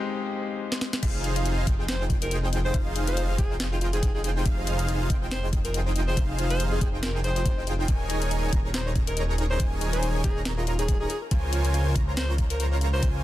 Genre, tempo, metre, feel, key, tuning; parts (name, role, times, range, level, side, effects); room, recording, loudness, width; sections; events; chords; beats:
future bass; 140 BPM; 4/4; swing 56% on 16ths, half-time; F minor; A4 = 440 Hz
warm grand piano; accompaniment; 0.0-1.0 s; Ab3 to G4; -32 LUFS; left 5 dB; sidechain pumping, dub echo
trap drum kit; drums; 0.7-13.1 s; crash cymbal, hi-hat, snare drum; -33 LUFS; left 2 dB; soft clipping on snare, studio reverb
airy dreamy lead; arpeggios; 1.0-13.2 s; F5 to Bb5; -39 LUFS; equal; chorus, sidechain pumping, dub echo
soft round pluck; arpeggios; 1.0-13.2 s; Eb4 to Eb5; -42 LUFS; left 4 dB
dense compressed supersaw; riff; 1.0-13.2 s; Eb4 to Bb5; -32 LUFS; right 1 dB; sidechain pumping, dub echo
wide detuned saw bass; bass; 1.0-13.2 s; Eb1 to Db2; -27 LUFS; equal; chorus, sidechain pumping
electronic kick drum; drums; 1.0-13.1 s; -25 LUFS; equal; studio reverb
clear alto saxophone; melody; 1.9-13.1 s; F4 to C5; -34 LUFS; equal; sidechain pumping, tape echo
little or no reverb; dense, heavily limited modern master; -23 LUFS; side -14 dB against mid
0.0-1.0 A section; 1.0-13.2 B section
break 0.0-1.0; build-up 0.0-1.0; drum fill 0.7-1.0; drop 1.0-13.2
0.0 Fm7; 7.9 Eb7sus4; 11.1 Bbm9/Db
0.17 0.60 | 1.03 1.46 1.88 2.31 | 2.74 3.17 3.60 4.03 | 4.46 4.88 5.31 5.74 | 6.17 6.60 7.03 7.46 | 7.88 8.31 8.74 9.17 | 9.60 10.03 10.46 10.88 | 11.31 11.74 12.17 12.60 | 13.03